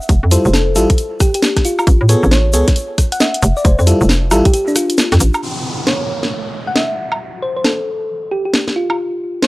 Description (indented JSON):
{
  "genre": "UK garage, two-step garage",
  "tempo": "135 BPM",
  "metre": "4/4",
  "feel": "swing 63% on 16ths",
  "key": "unclear",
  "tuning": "A4 = 440 Hz",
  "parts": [
    { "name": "egg shaker", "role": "percussion", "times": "0.0-5.4 s", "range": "none", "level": "-25 LUFS", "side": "left 1 dB", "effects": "none" },
    { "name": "hollow knocking FM bass", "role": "bass", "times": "0.1-5.3 s", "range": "F1 to A2", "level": "-13 LUFS", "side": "equal", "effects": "sidechain pumping" },
    { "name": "electronic kick drum", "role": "drums", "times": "0.1-4.5 s", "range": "none", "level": "-12 LUFS", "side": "equal", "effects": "none" },
    { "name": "garage drum kit", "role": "drums", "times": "0.1-9.5 s", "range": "hi-hat, rim click, snare drum, woodblock", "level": "-16 LUFS", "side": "equal", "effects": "none" },
    { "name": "thumb-piano-like synth pluck", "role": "melody", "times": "0.3-9.5 s", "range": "D4 to F#5", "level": "-19 LUFS", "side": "left 1 dB", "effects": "chorus, analog delay" },
    { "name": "FM electric piano", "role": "stabs", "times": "0.3-4.4 s", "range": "G3 to C#5", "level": "-17 LUFS", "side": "equal", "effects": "chorus, analog delay" },
    { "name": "downlifter", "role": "sound effects", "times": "5.4-9.0 s", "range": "none", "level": "-26 LUFS", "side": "equal", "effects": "none" }
  ],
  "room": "little or no reverb",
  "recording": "dry, gritty hardware recording, cassette tape",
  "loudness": "-12 LUFS",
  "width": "side -20 dB against mid",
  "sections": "0.0-5.4 A section; 5.4-9.5 B section",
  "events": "break 4.5-5.4",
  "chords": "0.0 Fmaj9; 1.9 Amaj9; 3.4 Fmaj9; 5.4 N.C."
}